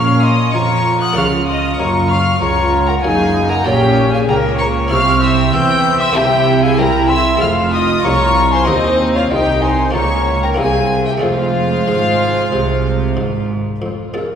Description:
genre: classical, baroque-style concerto movement with solo episodes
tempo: 96 BPM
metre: 4/4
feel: straight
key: Bb minor, F minor from 3.7 s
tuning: A4 = 440 Hz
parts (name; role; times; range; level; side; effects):
- mellow baroque flute; melody; 0.0-14.4 s; Bb4 to E6; -19 LUFS; left 1 dB; none
- rich chamber violin section; melody; 0.0-14.4 s; Db4 to G6; -21 LUFS; left 3 dB; none
- warm chamber violin section; second line; 0.0-13.5 s; Eb4 to G5; -20 LUFS; left 2 dB; none
- buff-stop harpsichord; accompaniment; 0.0-14.4 s; C2 to G4; -24 LUFS; equal; none
- warm studio viola section; accompaniment; 0.0-13.6 s; Ab3 to F4; -21 LUFS; right 1 dB; none
- rich chamber cello section; bass; 0.0-14.3 s; C2 to Bb3; -20 LUFS; right 3 dB; none
- rich chamber double bass section; bass; 0.0-14.3 s; F1 to Bb2; -20 LUFS; right 2 dB; none
room: wet concert hall reverb, RT60 2.0 s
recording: heard from further back in the room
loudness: -12 LUFS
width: side -8 dB against mid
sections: 0.0-13.8 A section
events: none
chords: 0.0 Bbm; 3.7 Bbm6; 4.9 C; 6.2 C7; 7.4 Fm; 8.7 Cm/Eb; 9.9 Bbm/Db; 10.6 C7; 11.2 Fm

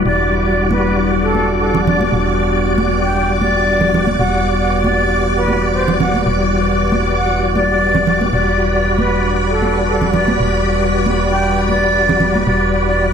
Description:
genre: deep house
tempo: 116 BPM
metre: 4/4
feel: swing 53% on 16ths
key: E minor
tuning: A4 = 435 Hz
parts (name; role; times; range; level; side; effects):
- dark analog pad; sustained chords; 0.0-13.1 s; G3 to D5; -24 LUFS; left 1 dB; chorus
- tonewheel organ; stabs; 0.0-13.1 s; G3 to D5; -17 LUFS; equal; chorus vibrato, fast rotary speaker, ping-pong delay
- organ-like FM bass; bass; 0.0-13.1 s; E1; -20 LUFS; equal; none
- concert flute; melody; 0.1-13.1 s; A4 to G5; -19 LUFS; equal; ping-pong delay
- string machine, violins; texture; 0.1-13.1 s; B4 to D6; -27 LUFS; equal; ensemble chorus
- congas; percussion; 0.7-12.4 s; none; -22 LUFS; right 3 dB; none
room: moderate lush hall reverb, RT60 2.4 s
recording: bright 1980s-style digital production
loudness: -13 LUFS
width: side -7 dB against mid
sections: 0.0-13.1 A section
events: filter sweep on analog synth pad 0.0-13.1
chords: 0.0 Em9

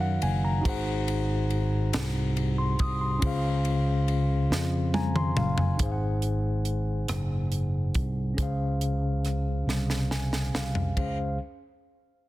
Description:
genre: slow gospel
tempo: 46 BPM (dotted quarters)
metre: 6/8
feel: straight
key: Db major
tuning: A4 = 440 Hz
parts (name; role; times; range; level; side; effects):
- mellow tine electric piano; accompaniment; 0.0-11.4 s; Db2 to Eb6; -29 LUFS; left 1 dB; medium stereo tremolo
- sustaining fretless electric bass; bass; 0.0-11.4 s; Gb1 to Gb2; -28 LUFS; equal; lush chorus
- tight funk drum kit; drums; 0.2-11.2 s; hi-hat, kick drum, ride cymbal, rim click, snare drum, toms; -31 LUFS; equal; none
room: small room ambience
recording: dense, heavily limited modern master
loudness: -25 LUFS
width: side -17 dB against mid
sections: 0.0-5.8 A section; 5.8-11.0 B section; 11.0-12.3 C section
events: drum fill 4.5-5.8, 9.7-11.0; tine electric piano fill 4.5-5.8, 9.7-11.0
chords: 0.0 Ebm7; 0.6 Ab7; 3.2 Dbmaj7; 5.8 Ab7; 8.4 Dbmaj7

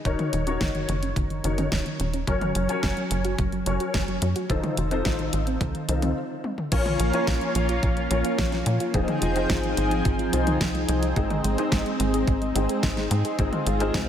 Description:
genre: synthwave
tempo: 108 BPM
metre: 4/4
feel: straight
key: unclear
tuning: A4 = 441 Hz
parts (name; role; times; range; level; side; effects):
- soft round pluck; arpeggios; 0.0-14.1 s; D#3 to Ab4; -31 LUFS; right 1 dB; chorus, tape echo
- warm concert grand piano; stabs; 0.1-14.1 s; C4 to C#5; -29 LUFS; left 3 dB; ensemble chorus, tape echo
- tight sequencer bass; bass; 0.1-14.1 s; D#1 to Bb2; -27 LUFS; equal; tube saturation, sidechain pumping
- electronic kick drum; drums; 0.1-14.1 s; none; -27 LUFS; equal; none
- pop drum kit; drums; 0.1-14.1 s; crash cymbal, hi-hat, snare drum, toms; -31 LUFS; equal; none
- analog string pad; sustained chords; 6.7-14.1 s; F3 to G5; -27 LUFS; equal; ensemble chorus, sidechain pumping
room: moderate lush hall reverb, RT60 2.6 s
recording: dreamy mix soaked in reverb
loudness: -22 LUFS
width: side -9 dB against mid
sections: 0.0-6.7 A section; 6.7-14.1 B section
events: filter sweep on synth arpeggio sound 0.0-6.7; stop 6.2-6.7; drum fill 6.4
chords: 0.1 D#m7; 2.3 F#; 4.5 F7; 6.7 Bbm; 8.9 Fm7; 11.2 Ab

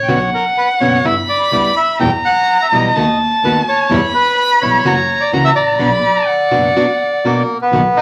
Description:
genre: tango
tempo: 126 BPM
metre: 4/4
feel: rubato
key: B harmonic minor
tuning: A4 = 438 Hz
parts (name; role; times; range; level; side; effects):
- bandoneon; melody; 0.0-8.0 s; A#3 to G5; -17 LUFS; equal; none
- dark violin; second line; 0.0-7.5 s; F#5 to B5; -18 LUFS; equal; none
- dark double bass; bass; 0.0-7.9 s; F#1 to E2; -25 LUFS; equal; none
- nylon-string guitar; accompaniment; 0.1-7.8 s; B2 to F#4; -20 LUFS; equal; none
room: wet club reverb, RT60 0.6 s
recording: vinyl crackle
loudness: -14 LUFS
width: mono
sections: 0.0-7.7 A section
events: none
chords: 0.1 Bmadd9; 1.1 G6; 2.0 Em; 3.0 B7/D#; 3.9 Em; 4.9 F#7; 5.8 Bm

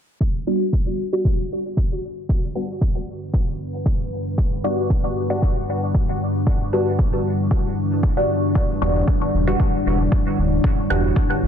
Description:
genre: dub techno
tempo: 115 BPM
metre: 4/4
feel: straight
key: E dorian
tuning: A4 = 439 Hz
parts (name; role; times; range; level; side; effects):
- deep dark ambient pad; sustained chords; 2.6-11.5 s; G3 to C#5; -24 LUFS; left 1 dB; chorus, built-in reverb, sidechain pumping
- electronic kick drum; drums; 0.2-11.3 s; none; -20 LUFS; equal; overdrive
- filtered dub chord stab; stabs; 0.5-11.1 s; G3 to F#4; -24 LUFS; equal; phaser, vintage 12-bit sampler grit, sidechain pumping, dub echo
- round analog bass; bass; 8.8-11.5 s; D1 to E1; -20 LUFS; equal; sidechain pumping
room: light reverb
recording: dense, heavily limited modern master, low-pass filter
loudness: -18 LUFS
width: side -8 dB against mid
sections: 0.2-11.5 A section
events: filter sweep on ambient pad 0.2-11.5; filter sweep 0.2-11.5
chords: 0.2 Em7

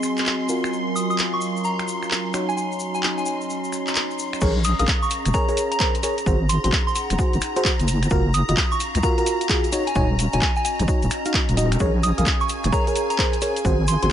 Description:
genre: UK garage, two-step garage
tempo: 130 BPM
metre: 4/4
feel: swing 64% on 16ths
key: Bb minor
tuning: A4 = 439 Hz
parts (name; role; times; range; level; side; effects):
- soft string machine; sustained chords; 0.0-14.1 s; Ab5 to C6; -32 LUFS; equal; ensemble chorus, sidechain pumping
- FM electric piano; stabs; 0.0-14.1 s; C4 to F5; -26 LUFS; equal; chorus, dub echo
- garage drum kit; drums; 0.0-14.1 s; crash cymbal, finger snaps, handclaps, hi-hat; -25 LUFS; equal; none
- tube shaker; percussion; 0.0-14.1 s; none; -34 LUFS; left 4 dB; none
- warbly tape-like pad; texture; 0.0-14.1 s; Gb3 to C6; -30 LUFS; right 1 dB; chorus, built-in reverb, sidechain pumping
- soft synth bell; melody; 1.0-14.1 s; Ab5 to Eb6; -27 LUFS; right 1 dB; chorus, phaser, dub echo
- deep soft wobble bass; bass; 4.4-14.1 s; Eb1 to Db2; -21 LUFS; equal; chorus, sidechain pumping
- electronic kick drum; drums; 4.4-13.8 s; none; -23 LUFS; equal; overdrive
room: light reverb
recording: nothing above 10.7 kHz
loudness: -19 LUFS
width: side -10 dB against mid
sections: 0.0-4.4 A section; 4.4-14.1 B section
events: drop 4.4-14.1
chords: 0.5 Gbmaj7; 2.3 Ebm7; 4.4 Bbm7; 6.3 Ab7; 7.9 Gbmaj7; 9.7 Ebm7; 11.8 Bbm7

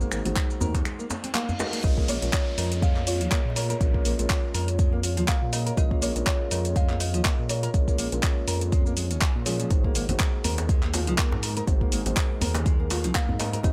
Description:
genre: afro house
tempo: 122 BPM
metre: 4/4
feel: swing 56% on 16ths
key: Bb minor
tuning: A4 = 445 Hz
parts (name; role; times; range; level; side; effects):
- dark analog pad; sustained chords; 0.2-13.7 s; Ab3 to Db5; -42 LUFS; equal; none
- nylon-string guitar; arpeggios; 0.0-13.6 s; F3 to Bb4; -36 LUFS; equal; sidechain pumping, tape echo
- felt-muted upright piano; stabs; 0.0-13.7 s; Ab3 to C5; -38 LUFS; equal; sidechain pumping, tape echo
- dark detuned saw bass; bass; 0.0-13.7 s; Ab1 to Bb2; -31 LUFS; equal; sidechain pumping
- deep house drum kit; drums; 0.0-13.7 s; finger snaps, handclaps, hi-hat, shaker; -32 LUFS; equal; none
- djembe; percussion; 0.0-1.7, 9.7-13.7 s; none; -36 LUFS; equal; none
- congas; percussion; 0.1-1.8, 10.0-13.6 s; none; -40 LUFS; equal; none
- electronic kick drum; drums; 0.4-13.7 s; none; -26 LUFS; equal; none
- reverse cymbal and downlifter; sound effects; 1.2-5.8 s; none; -41 LUFS; equal; none
- kalimba; melody; 1.3-8.4, 13.2-13.7 s; Db5 to F5; -37 LUFS; equal; none
room: small room ambience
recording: none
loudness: -25 LUFS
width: mono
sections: 0.0-1.8 A section; 1.8-13.7 B section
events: break 0.9-1.8; reverse cymbal 1.2-1.8; drop 1.8-13.7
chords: 0.0 Ab7; 1.8 Bbm7; 9.7 Ab7

